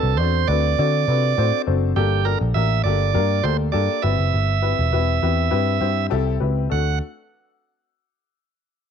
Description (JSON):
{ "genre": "uptempo 1960s-style soul", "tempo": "101 BPM", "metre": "4/4", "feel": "straight", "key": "D mixolydian", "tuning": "A4 = 440 Hz", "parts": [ { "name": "bright tonewheel organ", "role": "melody", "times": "0.0-7.0 s", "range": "G4 to F#5", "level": "-23 LUFS", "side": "right 13 dB", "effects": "overdrive" }, { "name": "warm upright piano", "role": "accompaniment", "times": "0.0-7.0 s", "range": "A3 to A5", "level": "-24 LUFS", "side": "left 14 dB", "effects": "none" }, { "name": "vintage muted picked electric bass", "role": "bass", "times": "0.0-7.0 s", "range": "E1 to D3", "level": "-20 LUFS", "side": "right 1 dB", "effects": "none" } ], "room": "light reverb, studio reverb", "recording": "1960s-style stereo with parts hard left and right", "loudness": "-18 LUFS", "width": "side -8 dB against mid", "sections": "0.0-2.0 A section; 2.0-6.7 B section; 6.7-8.9 C section", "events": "upright piano fill 5.8-6.7", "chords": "0.0 D7; 2.0 Gmadd9; 4.0 Cmaj7; 6.7 D" }